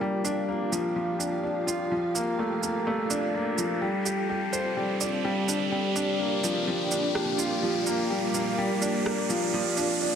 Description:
piano and strings electronica; 126 BPM; 4/4; straight; G minor; A4 = 438 Hz
granular cloud pad; sustained chords; 0.0-10.2 s; Bb3 to D5; -31 LUFS; right 3 dB; built-in reverb
felt-muted upright piano; riff; 0.0-10.2 s; F3 to D5; -27 LUFS; left 2 dB; digital delay
riser; sound effects; 1.5-10.2 s; -34 LUFS; right 1 dB
electronic shaker and rim click; drums; 0.2-9.9 s; -33 LUFS; right 5 dB; overdrive
moderate lush hall reverb, RT60 1.8 s; -25 LUFS; side -8 dB against mid
0.0-10.2 A section
build-up 0.0-10.2; riser 1.5-10.2
0.0 Gm7; 1.9 Bbmaj7; 3.8 Csus2; 5.7 Gm7; 9.5 Bbmaj7
| 0.01 0.49 0.96 1.44 | 1.92 2.39 2.87 3.35 | 3.82 4.30 4.78 5.25 | 5.73 6.20 6.68 7.16 | 7.63 8.11 8.58 9.06 | 9.54 10.01

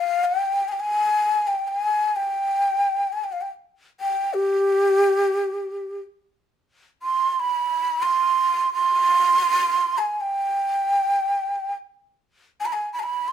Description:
Turkish makam ensemble; free time; G makam hicaz; A4 = 441 Hz
breathy ney; solo; 0.0-13.3 s; G4 to C6; -20 LUFS; right 1 dB
light reverb; band playing live in one room; -20 LUFS; side -9 dB against mid
0.0-6.6 A section; 6.6-13.3 A section
free time

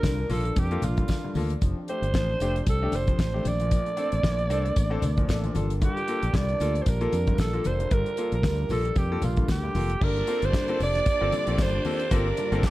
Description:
disco; 114 BPM; 4/4; swing 56% on 16ths; G minor; A4 = 440 Hz
growling alto saxophone; melody; 0.0-12.7 s; F4 to D5; -29 LUFS; right 2 dB
bright concert grand piano; accompaniment; 0.0-12.7 s; G2 to A4; -32 LUFS; left 4 dB
mellow French horn section; sustained chords; 0.0-12.7 s; F3 to Bb4; -37 LUFS; equal
fingered electric bass; bass; 0.0-12.6 s; F1 to F2; -27 LUFS; equal
damped 70s drum kit; drums; 0.0-12.7 s; crash cymbal, hi-hat, kick drum, snare drum; -27 LUFS; equal
congas; percussion; 0.0-12.7 s; -35 LUFS; left 3 dB
tambourine; percussion; 0.0-12.7 s; -49 LUFS; right 6 dB
rich studio violin section; second line; 10.0-12.7 s; D4 to D5; -34 LUFS; equal
light reverb, studio ambience; dark, warm production; -23 LUFS; side -16 dB against mid
0.0-10.0 A section; 10.0-12.7 B section
0.0 Gm9; 1.6 F6; 3.5 Bbmaj9; 5.6 Gm11
0.04 0.57 1.09 | 1.62 2.14 2.67 3.19 | 3.72 4.24 4.77 5.29 | 5.82 6.34 6.87 7.39 | 7.92 8.44 8.96 9.49 | 10.01 10.54 11.06 11.59 | 12.11 12.63

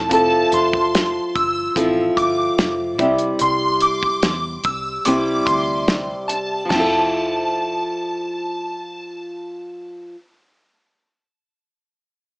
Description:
indie pop, bedroom pop; 73 BPM; 4/4; straight; F major; A4 = 439 Hz
flamenco guitar; accompaniment; 0.0-10.3 s; C3 to A4; -20 LUFS; equal; lush chorus, warbly pitch drift
vintage muted picked electric bass; bass; 0.0-10.0 s; F1 to E2; -34 LUFS; equal
shimmering bell with halo; second line; 0.1-9.1 s; A5 to E6; -20 LUFS; equal; ensemble chorus, lush chorus, slapback echo
cloth-damped thuddy drum kit; drums; 0.1-6.9 s; crash cymbal, hi-hat, kick drum, snare drum, toms; -21 LUFS; equal
moderate studio reverb, RT60 0.6 s; small speaker sound; -17 LUFS; side -35 dB against mid
0.1-6.7 A section; 6.7-10.0 B section
0.1 Fmaj7; 3.0 C; 6.7 Fmaj7
| 0.10 0.93 1.75 2.58 | 3.40 4.23 5.05 5.88 | 6.71 7.53 8.36 9.18

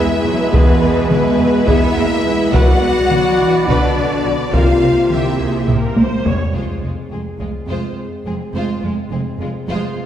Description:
cinematic, epic orchestral film score; 210 BPM (eighths); 7/8; straight; A4 = 438 Hz
rich symphonic violin section; melody; 0.0-9.9 s; F4 to F#5; -26 LUFS; left 4 dB
clear symphonic violin section; second line; 0.0-10.0 s; Ab3 to F#5; -27 LUFS; left 1 dB
rich symphonic viola section; accompaniment; 0.0-10.0 s; Ab3 to D5; -24 LUFS; right 2 dB
bright trombone section; sustained chords; 0.0-6.2 s; B2 to B3; -24 LUFS; right 2 dB
rich symphonic string section; sustained chords; 0.0-6.5 s; Bb3 to E5; -24 LUFS; equal
warm French horn section; sustained chords; 0.0-10.1 s; Ab3 to F#4; -20 LUFS; left 2 dB
clear symphonic double bass section; bass; 0.0-9.8 s; F1 to E2; -24 LUFS; right 1 dB
rich symphonic cello section; bass; 0.0-9.8 s; F2 to B3; -24 LUFS; right 2 dB
taiko ensemble; drums; 0.5-7.7 s; -17 LUFS; equal
wet scoring stage reverb, RT60 1.9 s; heard from further back in the room; -13 LUFS; side -10 dB against mid
0.0-6.5 A section; 6.5-10.1 B section
drum fill 5.7-6.5
0.0 E; 2.5 Bm; 4.5 C7; 6.5 Fm
0.25 | 0.54 0.82 1.11 1.40 1.68 1.97 2.25 | 2.54 2.82 3.11 3.40 3.68 3.97 4.25 | 4.54 4.83 5.11 5.40 5.68 5.97 6.25 | 6.54 6.83 7.11 7.40 7.68 7.97 8.26 | 8.54 8.83 9.11 9.40 9.69 9.97

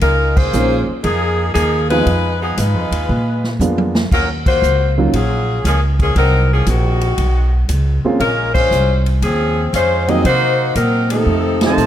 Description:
jazz, big band swing; 117 BPM; 4/4; swing 68% on 8ths; Bb minor; A4 = 440 Hz
bright saxophone section; melody; 0.0-11.9 s; Eb3 to Eb5; -17 LUFS; left 2 dB
upright bass; bass; 0.0-11.9 s; Bb1 to C3; -16 LUFS; equal
swinging big-band drum kit; drums; 0.0-11.9 s; crash cymbal, hi-hat, kick drum, ride cymbal, snare drum, toms; -22 LUFS; equal
warm concert grand piano; accompaniment; 0.5-11.8 s; F3 to Gb4; -20 LUFS; right 2 dB
dark trombone section; second line; 11.1-11.9 s; C3 to A3; -18 LUFS; right 3 dB
clear trumpet section; melody; 11.6-11.9 s; F4 to A5; -17 LUFS; right 3 dB
light reverb; -13 LUFS; side -11 dB against mid
0.0-11.9 A section
band accent 0.3, 4.4, 8.5, 11.5; drum fill 3.6-4.1
0.0 Db69; 2.1 Fm7b5; 3.1 Bb7b9; 4.1 Ebm9; 6.2 Cm7b5; 7.2 Badd9; 8.2 Bbm9; 10.2 Cm7b5; 11.3 F7
| 0.02 0.54 1.04 1.56 | 2.07 2.58 3.09 3.60 | 4.11 4.62 5.13 5.64 | 6.16 6.67 7.18 7.69 | 8.20 8.71 9.22 9.73 | 10.24 10.75 11.26 11.77

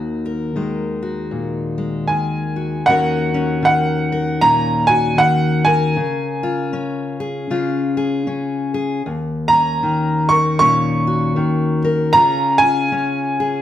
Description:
folk; 78 BPM; 4/4; swing 60% on 8ths; Eb minor; A4 = 439 Hz
fingerpicked steel-string acoustic guitar; accompaniment; 0.0-13.6 s; Eb2 to Bb4; -19 LUFS; left 2 dB
bright upright piano; melody; 2.1-13.6 s; Gb5 to Db6; -16 LUFS; right 1 dB
moderate large studio reverb, RT60 1.1 s; -15 LUFS; side -11 dB against mid
0.0-2.9 A section; 2.9-13.6 B section
0.0 Ebm; 2.9 Ebm7; 6.0 Db; 9.1 Ebm7; 12.1 Db6
0.55 1.33 2.10 | 2.88 3.65 4.42 5.19 | 5.96 6.74 7.51 8.28 | 9.05 9.82 10.59 11.37 | 12.14 12.91

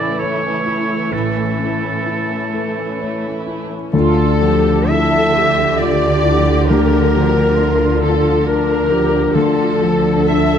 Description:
cinematic, emotional film score for orchestra; 66 BPM; 3/4; uneven beats, rubato; D harmonic minor; A4 = 441 Hz
clear oboe; second line; 0.0-3.5 s; A4 to D5; -23 LUFS; right 3 dB
muted studio violin section; second line; 0.0-10.6 s; A3 to E5; -25 LUFS; equal
dark grand piano; accompaniment; 0.0-10.6 s; D2 to C#5; -19 LUFS; left 2 dB
muted studio viola section; accompaniment; 0.0-10.6 s; E3 to A4; -22 LUFS; right 2 dB
concert harp; arpeggios; 0.0-10.6 s; A2 to A4; -23 LUFS; left 6 dB
muted studio cello section; bass; 1.1-10.6 s; A2 to D3; -23 LUFS; right 4 dB
muted studio double bass section; bass; 1.1-10.6 s; A1 to D2; -22 LUFS; right 4 dB
muted studio violin section; melody; 3.9-10.6 s; A4 to E5; -25 LUFS; left 2 dB
warm clarinet; second line; 3.9-10.6 s; A4 to E5; -18 LUFS; left 2 dB
moderate scoring stage reverb, RT60 2.0 s; close, detailed microphones; -13 LUFS; side -8 dB against mid
0.0-3.9 A section; 3.9-10.6 A section
0.0 A; 3.9 Dmadd9; 6.7 Bb/D; 9.3 Dmadd9
0.21 | 1.12 2.07 3.00 | 3.93 4.89 5.79 | 6.68 7.58 8.46 | 9.35 10.28

